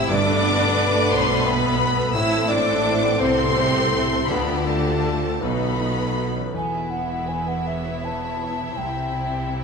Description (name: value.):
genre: cinematic, emotional film score for orchestra.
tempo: 51-60 BPM (dotted quarters).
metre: 6/8.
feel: rubato.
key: unclear.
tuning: A4 = 441 Hz.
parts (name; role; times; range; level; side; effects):
clear symphonic violin section; melody; 0.0-9.6 s; B4 to E6; -26 LUFS; left 2 dB; none.
mellow hollow concert flute; second line; 0.0-9.5 s; A4 to A5; -27 LUFS; left 1 dB; none.
rich chamber violin section; second line; 0.0-9.6 s; G3 to E5; -28 LUFS; left 3 dB; none.
rich studio viola section; accompaniment; 0.0-9.6 s; A3 to E4; -28 LUFS; right 2 dB; none.
warm concert grand piano; accompaniment; 0.0-9.6 s; B1 to E5; -28 LUFS; left 2 dB; none.
warm French horn section; sustained chords; 0.0-6.2 s; B2 to F4; -28 LUFS; equal; none.
concert harp; arpeggios; 0.0-9.6 s; G2 to G5; -32 LUFS; left 4 dB; none.
rich symphonic cello section; bass; 0.0-9.6 s; E2 to D3; -29 LUFS; right 2 dB; none.
warm symphonic double bass section; bass; 0.0-9.6 s; E1 to D2; -29 LUFS; right 4 dB; none.
timpani; percussion; 0.1-1.1 s; G2; -30 LUFS; right 4 dB; none.
room: wet scoring stage reverb, RT60 1.9 s.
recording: minimal, uncompressed stereo recording.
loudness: -19 LUFS.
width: side -5 dB against mid.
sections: 0.0-6.5 A section; 6.5-9.6 B section.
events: none.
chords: 0.1 Gadd9; 2.1 Am; 4.3 Dm; 5.4 B7; 6.5 Esus2; 8.8 C.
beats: | 0.09 1.11 | 2.13 3.19 | 4.29 5.41 | 6.54 7.67 | 8.78.